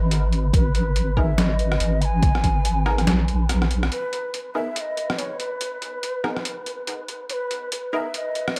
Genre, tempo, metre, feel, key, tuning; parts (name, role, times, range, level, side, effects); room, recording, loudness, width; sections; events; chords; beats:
deep dubstep; 142 BPM; 4/4; swing 59% on 16ths, half-time; G# minor; A4 = 442 Hz
deep soft wobble bass; bass; 0.0-3.9 s; G#1 to A#1; -23 LUFS; equal; chorus
wind-like tuned noise texture; texture; 0.0-8.6 s; B4; -38 LUFS; equal; built-in reverb
trip hop sampler-style drum kit; drums; 0.1-8.6 s; hi-hat, rim click, snare drum; -29 LUFS; equal
breathy mellow shakuhachi; melody; 0.5-8.6 s; B4 to B5; -31 LUFS; equal; dub echo
electronic kick drum; drums; 0.5-2.5 s; -22 LUFS; equal
filtered dub chord stab; stabs; 1.2-8.1 s; B3 to A#4; -34 LUFS; equal; chorus, dub echo
light reverb; echo-heavy mix; -23 LUFS; mono
0.0-3.9 A section; 3.9-8.6 B section
drum fill 3.5-3.9
0.0 G#madd9; 3.9 N.C.
0.11 | 0.54 0.96 1.38 1.80 | 2.23 2.65 3.07 3.49 | 3.92 4.34 4.76 5.18 | 5.61 6.03 6.45 6.87 | 7.30 7.72 8.14 8.56